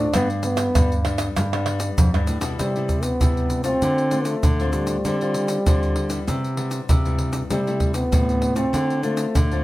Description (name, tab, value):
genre	samba and choro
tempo	98 BPM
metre	4/4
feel	straight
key	C major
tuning	A4 = 444 Hz
part	breathy trombone	melody	0.0-9.6 s	G3 to D4	-23 LUFS	equal	none
part	nylon-string guitar	accompaniment	0.0-9.6 s	G2 to F4	-29 LUFS	left 5 dB	none
part	nylon-string guitar	bass	0.0-9.6 s	F2 to D3	-25 LUFS	equal	none
part	tube shaker, surdo, pandeiro and tamborim	percussion	0.1-9.6 s	none	-22 LUFS	equal	none
room	light reverb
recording	none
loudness	-19 LUFS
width	side -17 dB against mid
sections	0.0-2.6 A section; 2.6-9.6 B section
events	none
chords	0.1 G; 2.6 Cmaj7; 3.8 Dm7; 5.0 G7sus4/D; 6.3 Cmaj7; 7.5 Am7/C; 8.7 Dm7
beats	| 0.14 0.75 1.36 1.98 | 2.59 3.21 3.82 4.43 | 5.05 5.66 6.28 6.89 | 7.51 8.12 8.74 9.35